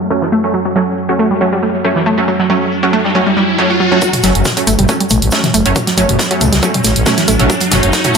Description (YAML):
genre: driving peak-time techno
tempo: 138 BPM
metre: 4/4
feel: straight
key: F# phrygian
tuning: A4 = 440 Hz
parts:
  - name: deep dark ambient pad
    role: drone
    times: 0.0-8.2 s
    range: F#3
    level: -20 LUFS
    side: right 4 dB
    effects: chorus, built-in reverb, sidechain pumping
  - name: downlifter and riser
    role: sound effects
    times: 0.0-8.2 s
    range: none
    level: -21 LUFS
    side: left 1 dB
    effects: none
  - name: analog pluck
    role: riff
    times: 0.1-8.2 s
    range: E3 to F#4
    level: -16 LUFS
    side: left 1 dB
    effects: chorus, tube saturation, sidechain pumping, digital delay
  - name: supersaw stab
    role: stabs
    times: 0.1-8.2 s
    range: F#3 to C#4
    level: -17 LUFS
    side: right 2 dB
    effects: wide subtle chorus, sidechain pumping, low-pass filter, digital delay
  - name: natural country drum kit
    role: drums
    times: 0.1-8.2 s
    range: hi-hat, shaker, snare drum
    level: -21 LUFS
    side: right 1 dB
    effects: sidechain pumping on hats, high-pass filter on hats, low-pass filter on hats, high-pass filter on snare, low-pass filter on snare, sidechain pumping on perc, high-pass filter on perc, low-pass filter on perc, high-pass filter on room, low-pass filter on room
  - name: electronic kick drum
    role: drums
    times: 4.0-8.0 s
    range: none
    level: -21 LUFS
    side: left 1 dB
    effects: high-pass filter on kick, high-pass filter on room
  - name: techno drum kit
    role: drums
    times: 4.0-8.2 s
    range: hi-hat, toms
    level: -17 LUFS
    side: right 1 dB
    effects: none
  - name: growling FM bass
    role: bass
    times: 4.2-8.2 s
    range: F#1 to C#2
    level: -16 LUFS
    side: left 1 dB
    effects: sidechain pumping
room: moderate lush hall reverb, RT60 2.3 s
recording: low-pass filter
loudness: -10 LUFS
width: side -6 dB against mid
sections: 0.0-4.0 A section; 4.0-8.2 B section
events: filter sweep on supersaw synth 0.0-4.0; filter sweep 0.0-4.0; riser 1.7-4.0, 4.0-8.2; build-up 4.0-8.2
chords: 0.0 F#m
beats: 0.11 | 0.54 0.98 1.41 1.84 | 2.28 2.71 3.15 3.58 | 4.02 4.45 4.89 5.32 | 5.76 6.19 6.63 7.06 | 7.50 7.93